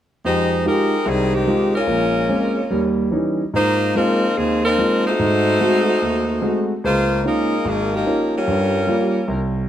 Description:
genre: jazz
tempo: 146 BPM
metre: 4/4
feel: swing 66% on 8ths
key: F minor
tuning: A4 = 436 Hz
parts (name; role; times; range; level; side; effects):
- edgy saxophone section; melody; 0.2-9.6 s; Eb3 to C5; -18 LUFS; left 1 dB; none
- warm concert grand piano; accompaniment; 0.2-9.6 s; Ab1 to G4; -20 LUFS; right 1 dB; none
room: moderate echo chamber reverb, RT60 2.2 s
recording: none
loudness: -16 LUFS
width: side -10 dB against mid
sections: 0.2-9.7 A section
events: none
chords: 0.2 Fm9; 1.9 Bbm9; 2.7 Eb7b9; 3.5 Ab69; 5.2 Ab7b9; 6.8 Db69; 8.5 Gm7b5

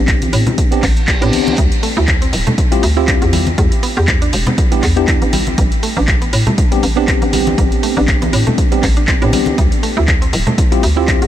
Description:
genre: deep house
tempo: 120 BPM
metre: 4/4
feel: swing 55% on 16ths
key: A minor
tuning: A4 = 443 Hz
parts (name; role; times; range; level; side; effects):
- tine electric piano; stabs; 0.0-11.3 s; B3 to G4; -19 LUFS; left 1 dB; slow stereo tremolo, sidechain pumping, ping-pong delay
- hollow knocking FM bass; bass; 0.0-11.3 s; D1 to A2; -16 LUFS; equal; sidechain pumping
- electronic kick drum; drums; 0.1-11.2 s; none; -15 LUFS; equal; none
- punchy analog drum machine; drums; 0.1-11.3 s; handclaps, hi-hat; -20 LUFS; equal; none
- congas; percussion; 0.2-10.6 s; none; -22 LUFS; left 1 dB; none
- reverse cymbal; sound effects; 0.8-1.6 s; none; -28 LUFS; right 2 dB; none
- mallet-like synth pluck; arpeggios; 1.6-11.2 s; G3 to G4; -23 LUFS; right 4 dB; chorus, sidechain pumping, ping-pong delay
room: light reverb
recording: none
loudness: -11 LUFS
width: side -11 dB against mid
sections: 0.0-11.3 A section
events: reverse cymbal 0.8-1.6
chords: 0.0 Am11; 1.6 Dm11; 3.3 Em7; 5.3 Am11; 9.6 Dm11

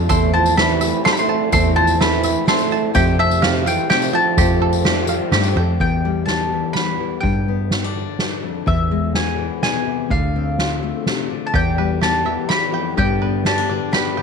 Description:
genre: indie folk with a building arrangement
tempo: 126 BPM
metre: 3/4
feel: straight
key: unclear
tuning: A4 = 438 Hz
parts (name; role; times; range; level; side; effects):
- clear upright piano; accompaniment; 0.0-5.8 s; F1 to A5; -29 LUFS; left 13 dB; none
- picked old ladder-braced acoustic guitar; accompaniment; 0.0-5.8, 11.5-14.2 s; E2 to G4; -26 LUFS; left 12 dB; none
- bluegrass banjo; arpeggios; 0.0-5.8, 11.5-14.2 s; G4 to A5; -25 LUFS; right 13 dB; none
- picked electric bass; bass; 0.0-13.8 s; D2 to G2; -21 LUFS; equal; none
- mandolin; melody; 0.1-14.2 s; E5 to C6; -21 LUFS; left 1 dB; none
- mellow French horn; second line; 0.1-5.5 s; C3 to A3; -22 LUFS; right 12 dB; none
- soft-mallet drum kit; drums; 0.1-14.0 s; kick drum, ride cymbal, snare drum; -22 LUFS; right 1 dB; none
- tambourine; percussion; 0.1-5.5 s; none; -32 LUFS; left 18 dB; none
- fingerpicked steel-string acoustic guitar; accompaniment; 5.8-14.2 s; E2 to G4; -24 LUFS; left 13 dB; none
room: light reverb, small room ambience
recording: 1960s-style stereo with parts hard left and right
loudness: -16 LUFS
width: side -5 dB against mid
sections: 0.0-5.8 A section; 5.8-14.2 B section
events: upright piano fill 5.1-5.8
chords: 0.1 Am/E; 2.9 Fadd9; 5.8 Em; 7.2 G; 8.7 E; 10.1 Dm7; 11.5 Em; 13.0 G

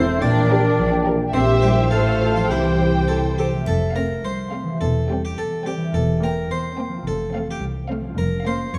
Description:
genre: cinematic, playful, whimsical film cue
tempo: 106 BPM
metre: 2/4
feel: straight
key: F major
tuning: A4 = 440 Hz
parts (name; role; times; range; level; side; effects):
- harpsichord; melody; 0.0-8.8 s; E4 to D5; -31 LUFS; equal; none
- rich studio violin section; melody; 0.0-8.7 s; C5 to G5; -33 LUFS; equal; none
- clear oboe; second line; 0.0-3.4 s; C5 to G5; -32 LUFS; equal; none
- mellow clarinet; second line; 0.0-3.3 s; A4 to C5; -29 LUFS; equal; none
- mellow hollow large flute ensemble; second line; 0.0-3.4 s; E5 to A5; -31 LUFS; equal; none
- rich studio violin section; second line; 0.0-8.7 s; C4 to C5; -36 LUFS; equal; none
- rich studio viola section; accompaniment; 0.0-8.7 s; G3 to A4; -30 LUFS; equal; none
- dark French horn section; sustained chords; 0.0-3.5 s; E4 to C5; -32 LUFS; equal; none
- concert harp; arpeggios; 0.0-8.8 s; A2 to C5; -29 LUFS; equal; none
- mellow tuba; bass; 0.0-3.5 s; E1 to C2; -28 LUFS; equal; none
- rich studio cello section; bass; 0.0-8.8 s; C2 to D4; -28 LUFS; equal; none
- rich studio double bass section; bass; 0.0-8.6 s; E1 to C2; -26 LUFS; equal; none
- triangle; percussion; 3.7-4.8 s; none; -51 LUFS; equal; none
room: wet scoring stage reverb, RT60 1.8 s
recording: dark, warm production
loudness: -20 LUFS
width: mono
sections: 0.0-3.7 A section; 3.7-8.8 B section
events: none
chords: 0.2 Gm/Bb; 1.3 C7/Bb; 1.9 F/A; 2.5 C; 3.7 F; 4.8 C/E; 5.9 C7/E; 7.1 F; 8.2 Bbm/F

